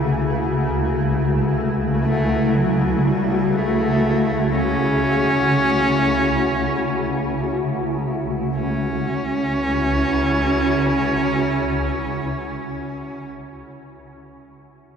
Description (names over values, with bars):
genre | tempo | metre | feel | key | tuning
dark ambient drone | free time | none | none | C# minor | A4 = 440 Hz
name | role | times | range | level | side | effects
granular cloud pad | sustained chords | 0.0-13.3 s | C#3 to F#4 | -22 LUFS | left 1 dB | built-in reverb
swarming drone | drone | 0.0-13.2 s | C#2 to C#3 | -25 LUFS | equal | built-in reverb
dark cello | melody | 2.0-13.3 s | F#3 to C#4 | -22 LUFS | right 1 dB | tape echo
room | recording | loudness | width
wet cathedral reverb, RT60 6.5 s | none | -18 LUFS | side -7 dB against mid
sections
0.0-8.5 A section; 8.5-12.5 B section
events
none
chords
0.0 F#m/C#; 8.5 C#m